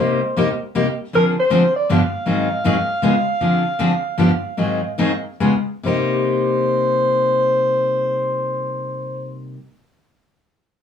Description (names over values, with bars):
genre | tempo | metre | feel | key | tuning
jazz | 134-158 BPM | 3/4 | swing 62% on 8ths | C minor | A4 = 440 Hz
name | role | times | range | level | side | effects
breathy alto saxophone | melody | 0.0-9.3 s | Bb4 to F5 | -20 LUFS | equal | none
picked steel-string acoustic guitar | accompaniment | 0.0-9.6 s | G2 to Ab4 | -19 LUFS | left 2 dB | none
room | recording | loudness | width
moderate small room reverb, RT60 0.5 s | studio ambience | -16 LUFS | side -8 dB against mid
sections
0.0-1.1 A section; 1.1-5.8 B section; 5.8-8.5 C section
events
slowing down 3.4-5.8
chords
0.0 Cm7; 1.1 Dm7b5; 1.9 G7; 2.3 Ab7; 3.0 Db7; 3.4 Dm7b5; 4.2 G7; 4.6 Ab7; 5.4 Db7; 5.8 Cm7